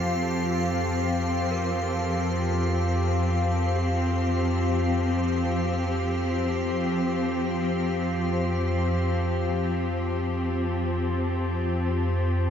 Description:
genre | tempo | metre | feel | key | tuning
dark ambient drone | free time | none | none | unclear | A4 = 440 Hz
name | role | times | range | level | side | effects
muted symphonic cello section | sustained chords | 0.0-12.5 s | F3 to G4 | -28 LUFS | left 2 dB | none
gamelan-type bronze metallophone | arpeggios | 0.0-10.6 s | C3 to Bb4 | -44 LUFS | right 2 dB | none
organ-like drone | drone | 0.0-12.5 s | F2 to F3 | -26 LUFS | right 1 dB | ensemble chorus, built-in reverb
icy glass pad | texture | 0.0-8.8 s | F5 | -34 LUFS | left 1 dB | chorus, built-in reverb
room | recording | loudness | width
wet cathedral reverb, RT60 5.2 s | in a vast, echoing space | -23 LUFS | side -8 dB against mid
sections
0.0-8.8 A section; 8.8-12.5 B section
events
none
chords
0.0 Fsus2

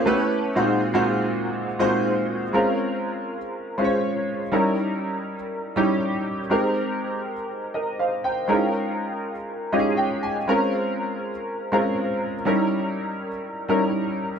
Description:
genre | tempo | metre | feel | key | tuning
pop | 121 BPM | 4/4 | swing 54% on 16ths | Bb dorian | A4 = 437 Hz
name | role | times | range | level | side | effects
clear concert grand piano | solo | 0.0-14.4 s | Bb2 to Ab5 | -22 LUFS | equal | ensemble chorus
room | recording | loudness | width
moderate booth ambience, RT60 0.2 s | none | -22 LUFS | side -7 dB against mid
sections
0.0-2.5 A section; 2.5-14.4 B section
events
grand piano fill 9.5-10.5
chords
0.1 A9; 0.6 Ab7/Bb; 2.5 Bbm9; 4.5 Eb7b9; 6.5 Abmaj9; 8.5 Db69; 10.5 Bbm9; 12.5 Eb7b9

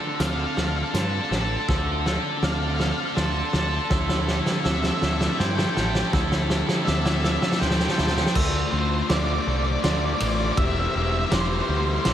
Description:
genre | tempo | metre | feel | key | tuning
post-rock | 81 BPM | 3/4 | straight | D minor | A4 = 440 Hz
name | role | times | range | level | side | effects
rich symphonic string section | sustained chords | 0.0-12.1 s | D3 to Bb5 | -38 LUFS | right 1 dB | none
glockenspiel with rubber mallets | arpeggios | 0.0-12.1 s | C6 to E6 | -34 LUFS | right 6 dB | slapback echo
twelve-string electric guitar | arpeggios | 0.0-8.4 s | D3 to A4 | -34 LUFS | right 1 dB | none
thick fuzz guitar | riff | 0.0-12.1 s | D3 to A4 | -29 LUFS | left 8 dB | distortion, slapback echo
tight distorted guitar | riff | 0.0-8.4 s | D4 to A4 | -33 LUFS | right 10 dB | distortion, slapback echo
octave-fuzz lead guitar | melody | 0.2-12.1 s | C5 to A5 | -30 LUFS | right 1 dB | distortion, slapback echo
growling picked electric bass | bass | 0.2-12.1 s | E1 to G2 | -26 LUFS | equal | overdrive
loose indie drum kit | drums | 0.2-12.1 s | crash cymbal, hi-hat, kick drum, ride cymbal, snare drum | -25 LUFS | equal | none
room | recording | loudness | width
moderate lush hall reverb, RT60 2.4 s | big arena sound | -21 LUFS | side -10 dB against mid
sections
0.0-8.4 A section; 8.4-12.1 B section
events
build-up 0.0-8.4; drum fill 0.0-8.4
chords
0.0 Dm7; 3.9 Am7; 8.4 Dm7; 10.6 C7/E

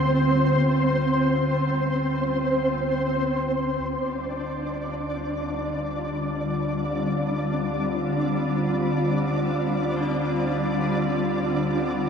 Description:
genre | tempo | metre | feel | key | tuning
dark ambient drone | free time | none | none | unclear | A4 = 440 Hz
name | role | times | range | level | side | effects
granular cloud pad | sustained chords | 0.0-12.1 s | D3 to F4 | -28 LUFS | left 1 dB | built-in reverb, shimmer reverb
deep rumbling drone | drone | 0.0-12.1 s | D2 to D3 | -28 LUFS | equal | built-in reverb, lush chorus
flickering grainy texture | texture | 0.0-12.1 s | C4 to D5 | -25 LUFS | equal | built-in reverb, shimmer reverb
tubular bells | arpeggios | 10.0-12.1 s | D4 | -42 LUFS | left 2 dB | none
room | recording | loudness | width
wet huge ambient reverb, RT60 9.2 s | none | -22 LUFS | side -7 dB against mid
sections
0.0-3.8 A section; 3.8-12.1 B section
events
none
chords
0.0 Gsus4

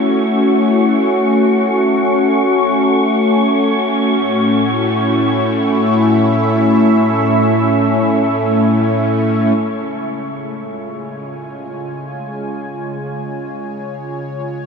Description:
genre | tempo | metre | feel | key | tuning
ambient | free time | none | none | unclear | A4 = 441 Hz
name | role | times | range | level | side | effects
warm analog pad | sustained chords | 0.0-14.7 s | A2 to G#5 | -14 LUFS | equal | chorus
wind-like tuned noise texture | texture | 0.0-9.6 s | C#6 | -24 LUFS | left 1 dB | built-in reverb
room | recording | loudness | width
wet huge ambient reverb, RT60 8.6 s | studio reverb | -12 LUFS | side -5 dB against mid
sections
0.0-9.6 A section; 9.6-14.7 B section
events
filter sweep on analog synth pad 0.0-9.6; fade-in on analog synth pad 9.6-14.7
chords
0.0 A; 9.6 C#

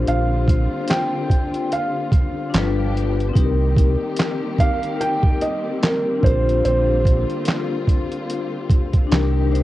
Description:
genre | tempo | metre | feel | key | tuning
lo-fi hip hop | 73 BPM | 4/4 | swing 57% on 16ths | C minor | A4 = 440 Hz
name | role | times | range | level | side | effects
vibraphone with medium hard mallets | accompaniment | 0.0-9.6 s | C4 to C5 | -25 LUFS | left 7 dB | cassette tape, low-pass filter, plate reverb
warm studio string section | sustained chords | 0.0-9.6 s | D3 to G4 | -28 LUFS | equal | low-pass filter, cassette tape, plate reverb
sub bass with octave | bass | 0.0-9.6 s | G1 to C2 | -20 LUFS | right 1 dB | none
felt-muted upright piano | melody | 0.1-9.5 s | Bb4 to G5 | -24 LUFS | right 2 dB | low-pass filter, cassette tape, plate reverb
boom bap sampler-style drum kit | drums | 0.1-9.6 s | handclaps, hi-hat, kick drum, snare drum | -18 LUFS | right 1 dB | cassette tape
room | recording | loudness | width
light reverb | home recording on cassette | -17 LUFS | side -15 dB against mid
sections
0.0-9.6 A section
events
none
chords
0.0 Bb69; 2.5 G7; 3.4 Cm7; 6.2 Bb69; 9.1 Cm7

